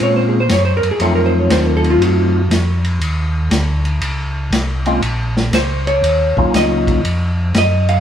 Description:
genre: soul jazz organ trio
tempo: 119 BPM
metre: 4/4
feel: swing 66% on 8ths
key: Bb minor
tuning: A4 = 440 Hz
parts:
  - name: percussive tonewheel organ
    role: melody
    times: 0.0-7.0 s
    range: Gb3 to F4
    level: -17 LUFS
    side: left 1 dB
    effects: fast rotary speaker
  - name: vintage hollow-body jazz guitar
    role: accompaniment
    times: 0.0-8.0 s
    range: F4 to F5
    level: -17 LUFS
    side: equal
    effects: none
  - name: mellow tonewheel organ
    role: bass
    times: 0.0-8.0 s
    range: Bb1 to Bb2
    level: -17 LUFS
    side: equal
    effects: slow rotary speaker
  - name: vintage drum kit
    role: drums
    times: 0.0-8.0 s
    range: hi-hat, kick drum, ride cymbal, snare drum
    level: -20 LUFS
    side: left 1 dB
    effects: none
room: moderate stone room reverb, RT60 1.3 s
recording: band playing live in one room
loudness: -13 LUFS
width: side -9 dB against mid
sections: 0.0-8.0 A section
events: hollow-body jazz guitar solo 0.0-8.0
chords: 0.0 Bbm7; 1.0 F7b9; 3.0 Ebm7; 5.0 Bbm; 6.0 Ebm7; 7.0 F7(no3)

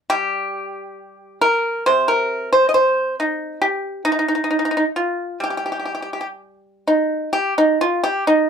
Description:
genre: chinese traditional, Chinese solo plucked strings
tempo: 62-69 BPM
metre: 4/4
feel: rubato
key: G jue mode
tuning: A4 = 440 Hz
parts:
  - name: pipa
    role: solo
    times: 0.1-8.5 s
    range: C3 to Eb5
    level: -17 LUFS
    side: equal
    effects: none
room: moderate small room reverb, RT60 0.5 s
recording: dark, warm production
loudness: -17 LUFS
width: side -7 dB against mid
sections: 0.0-7.3 A section; 7.3-8.5 B section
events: none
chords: none

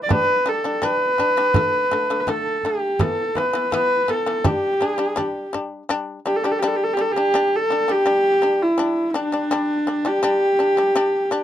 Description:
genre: mongolian traditional, Mongolian folk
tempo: 83 BPM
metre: 4/4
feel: straight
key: G gong mode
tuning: A4 = 444 Hz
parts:
  - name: clear horsehead fiddle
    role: melody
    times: 0.0-11.4 s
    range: D4 to D5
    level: -19 LUFS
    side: equal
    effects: none
  - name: shamisen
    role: arpeggios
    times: 0.0-11.4 s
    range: D3 to D4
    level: -26 LUFS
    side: left 4 dB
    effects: none
  - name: frame drum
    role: percussion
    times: 0.1-5.6 s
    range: none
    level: -23 LUFS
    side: right 2 dB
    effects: none
room: moderate booth ambience, RT60 0.2 s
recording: dark, warm production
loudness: -18 LUFS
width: side -11 dB against mid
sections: 0.0-5.9 A section; 5.9-11.4 B section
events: none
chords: 0.1 G5; 1.5 D5; 3.0 E5; 4.4 G5

